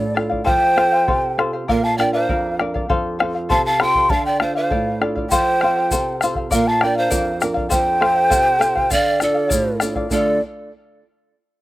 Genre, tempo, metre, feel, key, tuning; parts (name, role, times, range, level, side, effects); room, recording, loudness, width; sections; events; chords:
andean folk, Andean ensemble; 100 BPM; 2/4; straight; D minor; A4 = 436 Hz
mellow hollow large quena; melody; 0.0-10.4 s; D5 to C6; -18 LUFS; equal
breathy pan flute; second line; 0.0-10.4 s; A4 to G5; -24 LUFS; right 3 dB
charango; accompaniment; 0.0-10.4 s; A4 to F5; -24 LUFS; left 4 dB; slapback echo
flamenco guitar; accompaniment; 0.0-10.4 s; F2 to Bb4; -24 LUFS; right 3 dB
bombo; percussion; 0.2-10.4 s; -23 LUFS; left 1 dB
tube shaker; percussion; 5.3-10.4 s; -28 LUFS; left 4 dB
little or no reverb; recorded outdoors, with no room sound; -16 LUFS; side -16 dB against mid
0.5-10.1 A section; 10.1-11.3 B section
0.5 F; 1.7 Bb; 2.9 F; 4.1 Dm; 5.3 F; 6.5 Bb; 7.7 F; 8.9 Dm